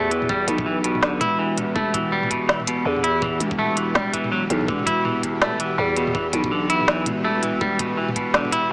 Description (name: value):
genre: half-time drum and bass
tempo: 164 BPM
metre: 4/4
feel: swing 59% on 16ths, half-time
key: E minor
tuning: A4 = 436 Hz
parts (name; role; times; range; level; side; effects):
- bowed-like drone; sustained chords; 0.0-8.7 s; E3 to G4; -28 LUFS; equal; built-in reverb, sidechain pumping
- clean electric guitar; arpeggios; 0.0-8.7 s; E2 to E4; -22 LUFS; equal; spring reverb, digital delay
- growling 808-style bass; bass; 0.0-8.7 s; E1 to E2; -26 LUFS; equal; none
- organic electronic drum kit; drums; 0.1-8.6 s; hi-hat, snare drum, toms; -24 LUFS; equal; none
- electronic kick drum; drums; 0.3-8.2 s; none; -32 LUFS; equal; none
room: moderate huge ambient reverb, RT60 4.8 s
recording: small speaker sound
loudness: -19 LUFS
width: side -27 dB against mid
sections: 0.0-8.7 A section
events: none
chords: 0.0 Emadd9